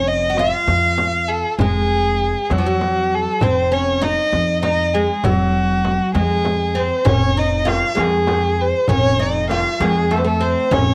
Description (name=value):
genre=Arabic maqam ensemble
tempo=66 BPM (dotted quarters)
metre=6/8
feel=straight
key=F maqam saba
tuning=A4 = 435 Hz
part: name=warm violin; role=melody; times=0.0-10.9 s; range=G4-48c to F5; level=-21 LUFS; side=equal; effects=cassette tape
part: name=oud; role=second line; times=0.0-10.9 s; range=F3 to Gb4+50c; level=-24 LUFS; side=equal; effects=cassette tape, tape echo
part: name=upright bass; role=bass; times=0.0-10.9 s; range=F1 to F2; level=-24 LUFS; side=equal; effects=none
part: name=frame drum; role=percussion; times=0.4-10.9 s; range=none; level=-27 LUFS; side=equal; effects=none
part: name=darbuka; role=percussion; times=7.1-10.9 s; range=none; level=-25 LUFS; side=equal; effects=none
room=light reverb, small room ambience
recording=home recording on cassette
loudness=-18 LUFS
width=mono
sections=0.0-10.9 A section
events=none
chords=none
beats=0.69 | 1.60 2.51 | 3.42 4.33 | 5.25 6.16 | 7.07 7.98 | 8.89 9.80 | 10.72